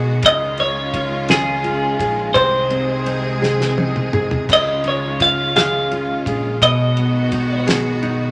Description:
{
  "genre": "six-eight pop ballad",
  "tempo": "56 BPM (dotted quarters)",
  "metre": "6/8",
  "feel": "straight",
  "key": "unclear",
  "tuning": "A4 = 440 Hz",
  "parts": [
    { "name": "nylon-string guitar", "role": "accompaniment", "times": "0.0-8.3 s", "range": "Cb3 to Ab4", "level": "-24 LUFS", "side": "equal", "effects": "none" },
    { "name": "rich symphonic string section", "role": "sustained chords", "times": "0.0-8.3 s", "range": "Eb3 to Ab4", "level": "-28 LUFS", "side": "equal", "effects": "none" },
    { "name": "fat analog bass", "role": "bass", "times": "0.0-8.3 s", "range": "Bb1 to Db2", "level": "-27 LUFS", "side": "equal", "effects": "none" },
    { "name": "damped 70s drum kit", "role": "drums", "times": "0.2-8.2 s", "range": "crash cymbal, kick drum, ride cymbal, snare drum, toms", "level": "-26 LUFS", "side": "equal", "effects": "none" },
    { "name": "twelve-string electric guitar", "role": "melody", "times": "0.3-7.6 s", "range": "Ab4 to F5", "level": "-20 LUFS", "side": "equal", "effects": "none" }
  ],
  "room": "wet club reverb, RT60 0.8 s",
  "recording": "none",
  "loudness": "-18 LUFS",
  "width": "mono",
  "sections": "0.0-8.3 A section",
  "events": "drum fill 3.4-4.5",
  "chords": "0.2 Dbadd9; 2.3 Ab/C; 4.5 Dbadd9; 6.6 Abm7/Cb"
}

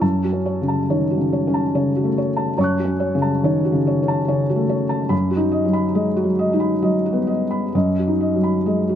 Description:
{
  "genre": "neoclassical minimalist piano",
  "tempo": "70 BPM",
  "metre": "3/4",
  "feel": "uneven beats, rubato",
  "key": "F# dorian",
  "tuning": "A4 = 445 Hz",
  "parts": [
    { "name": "felt-muted upright piano", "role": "solo", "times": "0.0-9.0 s", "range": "F#2 to F#6", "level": "-17 LUFS", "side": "equal", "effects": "none" }
  ],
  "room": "light reverb",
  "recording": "dark, warm production",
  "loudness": "-17 LUFS",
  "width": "side -9 dB against mid",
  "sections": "0.0-9.0 A section",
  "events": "none",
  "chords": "0.0 F#m; 5.1 B/F#"
}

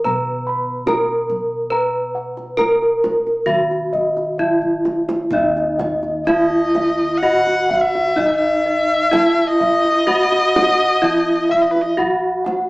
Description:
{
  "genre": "Javanese gamelan",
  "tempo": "63-74 BPM",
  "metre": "4/4",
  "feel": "straight",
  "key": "Eb pelog",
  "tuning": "A4 = 440 Hz",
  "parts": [
    { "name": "gamelan-type bronze metallophone", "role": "melody", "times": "0.0-12.7 s", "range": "Eb4 to Cb5", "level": "-19 LUFS", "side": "equal", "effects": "none" },
    { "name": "gamelan-type bossed gongs", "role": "bass", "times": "0.0-12.7 s", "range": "Eb2 to Cb5", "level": "-28 LUFS", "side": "equal", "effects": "none" },
    { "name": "gamelan-type bossed gongs", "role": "arpeggios", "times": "0.1-12.5 s", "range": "Eb5 to Cb6", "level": "-22 LUFS", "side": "equal", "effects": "none" },
    { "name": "kendang", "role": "percussion", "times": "0.1-12.7 s", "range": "none", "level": "-27 LUFS", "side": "right 1 dB", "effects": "none" },
    { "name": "gamelan-type bronze metallophone", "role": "arpeggios", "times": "5.3-12.7 s", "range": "Eb5 to Gb5", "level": "-22 LUFS", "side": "equal", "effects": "none" },
    { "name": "rich erhu", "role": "second line", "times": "6.3-11.9 s", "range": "Cb5 to Gb5", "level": "-18 LUFS", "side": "left 1 dB", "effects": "none" }
  ],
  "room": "wet studio reverb, RT60 0.8 s",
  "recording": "band playing live in one room, small speaker sound",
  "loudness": "-15 LUFS",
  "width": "side -22 dB against mid",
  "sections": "0.0-5.3 A section; 5.3-12.7 B section",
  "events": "drum fill 4.4-5.3",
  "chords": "none"
}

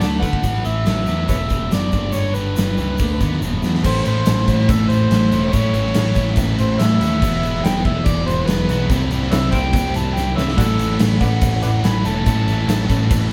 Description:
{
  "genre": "classic rock",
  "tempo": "143 BPM",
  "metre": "4/4",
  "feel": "straight",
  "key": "A major from 3.8 s",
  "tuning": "A4 = 440 Hz",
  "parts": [
    { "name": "overdriven harmonica", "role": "melody", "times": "0.0-13.3 s", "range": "D4 to B5", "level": "-27 LUFS", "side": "equal", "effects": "none" },
    { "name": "distorted electric guitar", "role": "riff", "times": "0.0-13.3 s", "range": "E2 to E4", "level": "-31 LUFS", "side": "equal", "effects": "overdrive" },
    { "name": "overdriven electric guitar", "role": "riff", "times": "0.0-13.3 s", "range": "E2 to E4", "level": "-28 LUFS", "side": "equal", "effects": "none" },
    { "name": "growling picked electric bass", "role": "bass", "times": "0.0-13.3 s", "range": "E1 to D3", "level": "-23 LUFS", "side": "equal", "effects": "overdrive" },
    { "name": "big rock drum kit", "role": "drums", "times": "0.0-13.2 s", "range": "crash cymbal, hi-hat, kick drum, snare drum, toms", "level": "-23 LUFS", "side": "equal", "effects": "none" },
    { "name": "tube shaker", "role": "percussion", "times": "0.0-13.2 s", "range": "none", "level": "-42 LUFS", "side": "equal", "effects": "none" },
    { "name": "overdriven tonewheel organ", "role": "sustained chords", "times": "3.5-13.3 s", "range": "A3 to E5", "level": "-40 LUFS", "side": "equal", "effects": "none" },
    { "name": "fuzz guitar", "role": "riff", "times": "3.8-13.3 s", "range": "E2 to C4", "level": "-26 LUFS", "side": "equal", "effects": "distortion" }
  ],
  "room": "moderate stone room reverb, RT60 1.3 s",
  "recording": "band playing live in one room",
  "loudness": "-18 LUFS",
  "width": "mono",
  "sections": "0.0-3.8 A section; 3.8-13.3 B section",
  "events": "drum fill 3.4-3.8, 10.2-10.6; harmonica solo 3.8-13.3",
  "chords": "0.4 A5; 1.3 E5; 1.9 G; 3.0 D5; 3.4 E5; 3.8 A6; 7.2 Eadd9; 8.9 C; 10.6 A6"
}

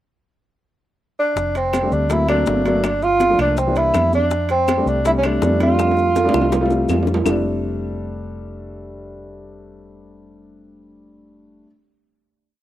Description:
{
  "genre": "Afro-Cuban jazz",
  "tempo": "163 BPM",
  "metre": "4/4",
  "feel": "straight",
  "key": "F major",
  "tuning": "A4 = 440 Hz",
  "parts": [
    { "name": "warm tenor saxophone", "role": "melody", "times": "1.2-6.9 s", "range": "C4 to F4", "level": "-18 LUFS", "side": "right 2 dB", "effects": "none" },
    { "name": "hollow-body short-scale fingered electric bass", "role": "bass", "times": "1.4-11.6 s", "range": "F1 to F2", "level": "-24 LUFS", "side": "equal", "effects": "none" },
    { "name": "bongos", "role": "percussion", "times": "1.4-7.3 s", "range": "none", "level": "-26 LUFS", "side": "left 8 dB", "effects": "none" },
    { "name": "congas", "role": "percussion", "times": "1.4-7.3 s", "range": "none", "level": "-26 LUFS", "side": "equal", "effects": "none" },
    { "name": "maracas", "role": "percussion", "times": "1.4-7.3 s", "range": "none", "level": "-40 LUFS", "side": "left 4 dB", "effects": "none" },
    { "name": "timbales", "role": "percussion", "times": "1.6-7.3 s", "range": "none", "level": "-26 LUFS", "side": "right 5 dB", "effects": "none" },
    { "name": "claves", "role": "percussion", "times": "1.7-7.3 s", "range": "none", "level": "-34 LUFS", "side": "left 4 dB", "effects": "none" },
    { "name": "warm grand piano", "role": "accompaniment", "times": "1.8-11.7 s", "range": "E3 to F4", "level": "-23 LUFS", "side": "left 2 dB", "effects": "none" }
  ],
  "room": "small room ambience",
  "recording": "rough home demo mix",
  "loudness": "-16 LUFS",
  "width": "side -13 dB against mid",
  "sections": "0.0-1.4 pickup bar; 1.4-7.3 A section; 7.3-10.2 final chord",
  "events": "drum fill 5.8-7.3",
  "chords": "0.0 N.C.; 1.4 F6; 2.1 D7b13; 2.8 Gm9; 3.6 C9; 4.3 F6"
}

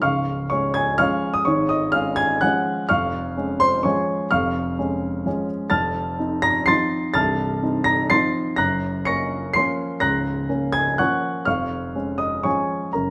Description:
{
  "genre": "classical, piano waltz",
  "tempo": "125 BPM",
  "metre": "3/4",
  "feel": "uneven beats, rubato",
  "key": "Db major",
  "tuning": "A4 = 440 Hz",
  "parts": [
    { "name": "warm grand piano", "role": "solo", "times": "0.0-13.1 s", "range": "C1 to Db7", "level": "-22 LUFS", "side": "equal", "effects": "none" }
  ],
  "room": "moderate recital hall reverb, RT60 1.4 s",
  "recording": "none",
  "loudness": "-22 LUFS",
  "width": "mono",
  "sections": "0.0-13.1 A section",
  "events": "none",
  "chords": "0.0 Db; 2.9 Db/F; 5.7 F7; 8.6 Gbmaj7; 11.5 Db/F"
}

